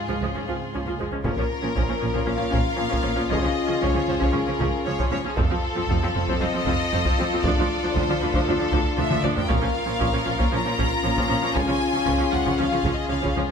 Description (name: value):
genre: cinematic, epic orchestral film score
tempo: 116 BPM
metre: 4/4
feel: straight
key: Bb minor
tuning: A4 = 440 Hz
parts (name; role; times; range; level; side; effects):
- rich symphonic violin section; melody; 0.0-13.3 s; Ab4 to Bb5; -28 LUFS; left 4 dB; none
- clear studio violin section; second line; 0.0-13.5 s; F4 to Bb4; -30 LUFS; left 3 dB; none
- mellow French horn section; sustained chords; 0.0-13.4 s; Ab3 to F4; -29 LUFS; left 3 dB; none
- rich symphonic cello section; bass; 0.0-13.4 s; D2 to Db3; -31 LUFS; right 2 dB; none
- clear symphonic viola section; accompaniment; 0.1-13.5 s; F3 to F4; -28 LUFS; right 1 dB; none
- rich symphonic double bass section; bass; 0.1-13.4 s; F1 to D2; -30 LUFS; right 3 dB; none
- taiko ensemble; drums; 1.2-13.5 s; none; -27 LUFS; equal; none
room: moderate recital hall reverb, RT60 1.6 s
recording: none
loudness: -21 LUFS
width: side -6 dB against mid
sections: 0.0-1.3 A section; 1.3-13.5 B section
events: drum fill 9.0-9.5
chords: 0.0 Db; 1.3 Bbm; 3.3 Db; 5.4 F; 7.4 Dm; 9.5 Bbm; 11.6 Db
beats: 0.22 0.74 | 1.25 1.77 2.29 2.80 | 3.32 3.83 4.35 4.86 | 5.38 5.89 6.41 6.92 | 7.44 7.95 8.47 8.98 | 9.50 10.02 10.53 11.04 | 11.56 12.08 12.59 13.11